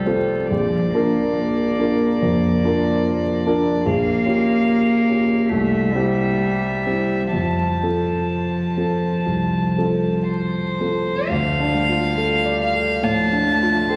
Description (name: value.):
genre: classical, slow romantic movement for piano trio.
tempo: 57-76 BPM.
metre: 4/4.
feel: rubato.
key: F major.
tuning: A4 = 438 Hz.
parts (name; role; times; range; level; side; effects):
warm violin; melody; 0.0-14.0 s; A4 to A5; -27 LUFS; equal; none.
warm cello; second line; 0.0-14.0 s; F3 to C4; -25 LUFS; equal; none.
dark grand piano; accompaniment; 0.0-14.0 s; Bb1 to D5; -22 LUFS; equal; none.
room: wet concert hall reverb, RT60 2.5 s.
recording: vinyl crackle.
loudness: -20 LUFS.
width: mono.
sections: 0.0-11.3 A section; 11.3-14.0 B section.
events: none.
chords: 0.0 F; 0.5 Bb; 3.8 Gm7b5/Bb; 5.5 C; 7.3 F; 11.3 Dm.